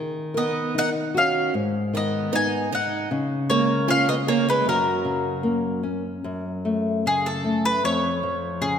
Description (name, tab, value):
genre	fado-style ballad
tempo	76 BPM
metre	2/4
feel	rubato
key	F# major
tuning	A4 = 440 Hz
part	nylon-string guitar	accompaniment	0.0-8.8 s	E#2 to A#4	-25 LUFS	left 2 dB	none
part	bowl-back mandolin	melody	0.4-8.8 s	G#4 to G#5	-24 LUFS	left 2 dB	none
part	picked twelve-string acoustic guitar	second line	0.4-5.8 s	F#3 to D#4	-26 LUFS	right 6 dB	none
room	wet concert hall reverb, RT60 1.9 s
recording	none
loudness	-21 LUFS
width	side -8 dB against mid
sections	0.0-6.2 A section; 6.2-8.8 B section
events	none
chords	0.0 D#m; 1.5 G#m; 3.1 C#; 4.7 F#; 6.2 F#m; 7.8 C#/E#